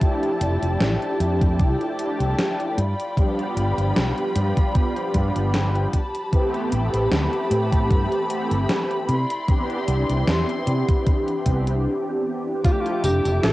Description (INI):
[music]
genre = vaporwave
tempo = 76 BPM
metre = 4/4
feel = swing 54% on 16ths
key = C major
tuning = A4 = 439 Hz
[part]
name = mellow synth brass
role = accompaniment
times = 0.0-13.5 s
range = E3 to G4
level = -25 LUFS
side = equal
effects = ensemble chorus, cassette tape, tape echo
[part]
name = dark studio string section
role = sustained chords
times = 0.0-13.5 s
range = E4 to D6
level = -28 LUFS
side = left 1 dB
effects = cassette tape
[part]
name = electronic kick drum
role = drums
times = 0.0-12.8 s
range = none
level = -20 LUFS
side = equal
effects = vintage 12-bit sampler grit
[part]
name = gated 80s digital drum machine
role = drums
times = 0.0-13.5 s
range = hi-hat, snare drum, tambourine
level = -27 LUFS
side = equal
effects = gated reverb, gated reverb snare, vintage 12-bit sampler grit
[part]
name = mellow fretless electric bass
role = bass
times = 0.4-13.5 s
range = F1 to C3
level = -22 LUFS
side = equal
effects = none
[part]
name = warm alto saxophone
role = melody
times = 12.6-13.5 s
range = F4 to A4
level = -23 LUFS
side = equal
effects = vintage 12-bit sampler grit, cassette tape
[sound]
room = moderate spring reverb, RT60 2.6 s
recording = home recording on cassette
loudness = -19 LUFS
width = side -17 dB against mid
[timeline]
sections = 0.0-12.6 A section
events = break 11.9-12.6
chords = 0.0 Fmaj13; 2.8 G7; 5.9 Am9; 9.1 Cmaj9; 12.6 Fmaj13